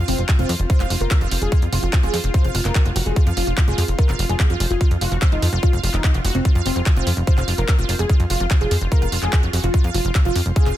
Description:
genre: psychedelic trance.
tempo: 146 BPM.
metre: 4/4.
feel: straight.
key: F minor.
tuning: A4 = 441 Hz.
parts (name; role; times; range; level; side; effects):
wide unison pluck; riff; 0.0-10.7 s; F4 to F5; -30 LUFS; right 3 dB; auto-pan, sidechain pumping, dub echo.
plucky analog bass; bass; 0.0-10.7 s; F1 to F2; -21 LUFS; equal; tube saturation.
airy breathy pad; texture; 0.0-10.8 s; C4 to C6; -32 LUFS; right 1 dB; chorus, sidechain pumping.
wide unison lead; melody; 0.1-10.7 s; C4 to C5; -27 LUFS; equal; phaser, sidechain pumping, ping-pong delay.
big-room dance drum kit; drums; 0.1-10.7 s; handclaps, hi-hat; -26 LUFS; equal; overdrive.
electronic kick drum; drums; 0.3-10.6 s; none; -16 LUFS; equal; none.
room: little or no reverb.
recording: dense, heavily limited modern master.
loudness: -16 LUFS.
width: side -13 dB against mid.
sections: 0.0-10.8 A section.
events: none.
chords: 0.0 F5.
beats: 0.29 | 0.70 1.11 1.52 1.93 | 2.34 2.75 3.16 3.58 | 3.99 4.40 4.81 5.22 | 5.63 6.04 6.45 6.86 | 7.27 7.68 8.10 8.51 | 8.92 9.33 9.74 10.15 | 10.56.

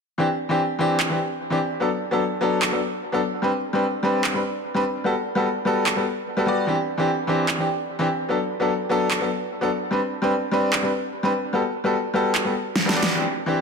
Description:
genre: future bass.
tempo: 148 BPM.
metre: 4/4.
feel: swing 53% on 16ths, half-time.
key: G major.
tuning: A4 = 442 Hz.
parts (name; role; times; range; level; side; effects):
bright concert grand piano; accompaniment; 0.2-13.6 s; E3 to D5; -21 LUFS; left 1 dB; dub echo.
electronic handclaps and snare drum; drums; 1.0-13.1 s; none; -24 LUFS; right 1 dB; none.
room: moderate digital room reverb, RT60 1.1 s, studio ambience.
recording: dense, heavily limited modern master.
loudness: -20 LUFS.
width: side -5 dB against mid.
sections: 0.2-13.6 A section.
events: drum fill 12.8-13.2.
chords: 0.2 D9sus4; 1.8 Bm7; 3.2 Gadd11; 5.1 Gmaj9; 6.7 D9sus4; 8.3 Bm7; 9.7 Gadd11; 11.5 Gmaj9.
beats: | 0.19 0.59 1.00 1.40 | 1.81 2.21 2.62 3.03 | 3.43 3.84 4.24 4.65 | 5.05 5.46 5.86 6.27 | 6.67 7.08 7.49 7.89 | 8.30 8.70 9.11 9.51 | 9.92 10.32 10.73 11.13 | 11.54 11.95 12.35 12.76 | 13.16 13.57.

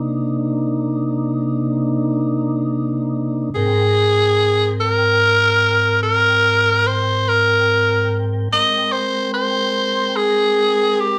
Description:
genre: blues.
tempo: 48 BPM (dotted quarters).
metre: 12/8.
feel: straight.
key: unclear.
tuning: A4 = 441 Hz.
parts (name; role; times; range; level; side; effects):
mellow tonewheel organ; sustained chords; 0.0-11.2 s; Ab2 to G5; -22 LUFS; equal; slow rotary speaker.
growling tenor saxophone; melody; 3.5-11.2 s; G4 to Eb5; -17 LUFS; equal; none.
room: wet large studio reverb, RT60 0.8 s.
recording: band playing live in one room.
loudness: -17 LUFS.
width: mono.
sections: 0.0-11.2 A section.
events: none.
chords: 0.0 Cm7; 3.5 Abmaj7.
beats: 1.05 2.29 | 3.54 4.78 6.02 7.27 | 8.51 9.76 11.00.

